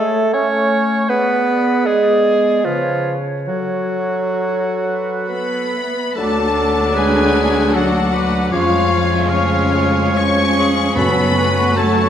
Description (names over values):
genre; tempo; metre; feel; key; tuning
classical, slow romantic movement for symphony orchestra; 61-84 BPM; 3/4; rubato; F# minor; A4 = 440 Hz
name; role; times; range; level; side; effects
clear oboe; second line; 0.0-12.1 s; E#4 to E#5; -23 LUFS; right 1 dB; none
mellow flute section; second line; 0.0-12.1 s; A4 to D6; -26 LUFS; equal; none
warm clarinet; second line; 0.0-12.1 s; C#4 to C#5; -22 LUFS; left 1 dB; none
warm bassoon; accompaniment; 0.0-12.1 s; E#3 to C#4; -20 LUFS; right 2 dB; none
mellow French horn section; sustained chords; 0.0-11.2 s; C#3 to F#4; -24 LUFS; left 3 dB; none
warm studio violin section; melody; 5.3-12.1 s; C#5 to C#6; -22 LUFS; left 4 dB; none
warm studio cello section; bass; 5.3-12.1 s; C#3 to C#4; -22 LUFS; right 2 dB; none
warm studio violin section; second line; 6.2-12.1 s; C#4 to F#4; -25 LUFS; left 4 dB; none
rich studio viola section; accompaniment; 6.2-12.1 s; F#3 to D4; -22 LUFS; left 1 dB; none
rich studio double bass section; bass; 6.2-12.1 s; D2 to F#2; -22 LUFS; right 1 dB; none
timpani; percussion; 11.0-12.1 s; F#2; -23 LUFS; equal; none
room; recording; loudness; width
wet scoring stage reverb, RT60 1.7 s; none; -14 LUFS; side -9 dB against mid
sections
0.0-6.2 A section; 6.2-12.1 B section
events
none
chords
0.0 F#m (rootless); 1.1 G#dim/B; 2.6 C#7; 3.5 F#m; 6.2 D; 8.5 C#/E#; 11.0 F#m